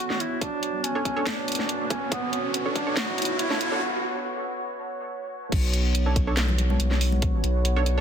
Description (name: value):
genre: deep dubstep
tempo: 141 BPM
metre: 4/4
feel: half-time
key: B minor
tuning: A4 = 440 Hz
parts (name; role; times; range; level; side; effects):
- warm duduk; melody; 0.0-3.8 s; B3 to F#4; -30 LUFS; equal; dub echo
- deep dark ambient pad; sustained chords; 0.0-8.0 s; B3 to C#5; -31 LUFS; right 1 dB; chorus, built-in reverb
- riser; sound effects; 0.0-3.8 s; none; -32 LUFS; equal; none
- garage drum kit; drums; 0.1-8.0 s; crash cymbal, handclaps, hi-hat, snare drum; -29 LUFS; equal; none
- electronic kick drum; drums; 0.4-2.8, 5.5-7.3 s; none; -26 LUFS; equal; high-pass filter on kick, high-pass filter on room
- filtered dub chord stab; stabs; 1.0-8.0 s; D4 to C#5; -34 LUFS; right 4 dB; chorus, cassette tape, dub echo
- saturated sub bass; bass; 5.5-8.0 s; B1; -23 LUFS; equal; tube saturation
- congas; percussion; 6.5-7.2 s; none; -32 LUFS; left 3 dB; none
room: light reverb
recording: dense, heavily limited modern master, high-pass filter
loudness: -23 LUFS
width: side -8 dB against mid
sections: 0.0-5.5 A section; 5.5-8.0 B section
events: build-up 0.0-5.5; riser 0.0-3.8; filter sweep 0.0-5.5; break 3.8-5.5; drop 5.5-8.0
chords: 0.0 Bm7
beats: | 0.42 0.84 1.27 1.69 | 2.12 2.54 2.97 3.40 | 3.82 4.25 4.67 5.10 | 5.52 5.95 6.37 6.80 | 7.22 7.65